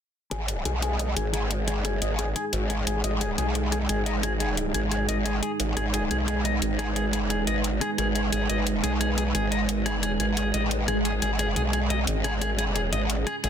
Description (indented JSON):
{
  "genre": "dark technical drum and bass",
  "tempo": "176 BPM",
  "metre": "4/4",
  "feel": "straight",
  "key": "G# minor",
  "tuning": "A4 = 440 Hz",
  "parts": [
    { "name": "dark analog pad", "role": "sustained chords", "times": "0.7-13.5 s", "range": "G#3 to B4", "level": "-30 LUFS", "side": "right 5 dB", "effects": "chorus" },
    { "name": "clean electric guitar", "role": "arpeggios", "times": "0.3-13.5 s", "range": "G#4 to D#5", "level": "-30 LUFS", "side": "left 2 dB", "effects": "harmonic tremolo, low-pass filter, tape echo" },
    { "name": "growl bass", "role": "bass", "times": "0.3-13.5 s", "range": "G#1 to B1", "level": "-27 LUFS", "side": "equal", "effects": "chorus" },
    { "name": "electronic hi-hat", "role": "drums", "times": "0.3-13.5 s", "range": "none", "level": "-31 LUFS", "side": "left 2 dB", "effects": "overdrive" },
    { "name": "swell", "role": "sound effects", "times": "10.7-11.2 s", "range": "none", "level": "-32 LUFS", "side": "left 1 dB", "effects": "none" }
  ],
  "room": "light reverb",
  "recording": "dense, heavily limited modern master",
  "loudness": "-24 LUFS",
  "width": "side -8 dB against mid",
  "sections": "0.3-13.5 A section",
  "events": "filter sweep on clean electric guitar 0.3-13.5; swell 10.7-11.2",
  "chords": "0.3 G#5"
}